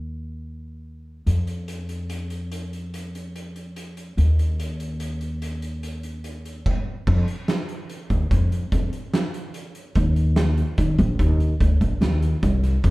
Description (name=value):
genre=progressive instrumental, band music in an uneven meter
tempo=145 BPM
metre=7/4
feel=straight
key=unclear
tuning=A4 = 440 Hz
part: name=upright bass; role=bass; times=0.0-12.9 s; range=Bb1 to Eb3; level=-22 LUFS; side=equal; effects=none
part: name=oversized low-tuned drum kit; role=drums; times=1.3-12.9 s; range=crash cymbal, hi-hat, kick drum, snare drum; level=-26 LUFS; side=right 1 dB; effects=none
room=wet studio reverb, RT60 0.7 s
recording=heard from further back in the room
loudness=-21 LUFS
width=side -20 dB against mid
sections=0.0-7.1 A section; 7.1-12.9 B section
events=none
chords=none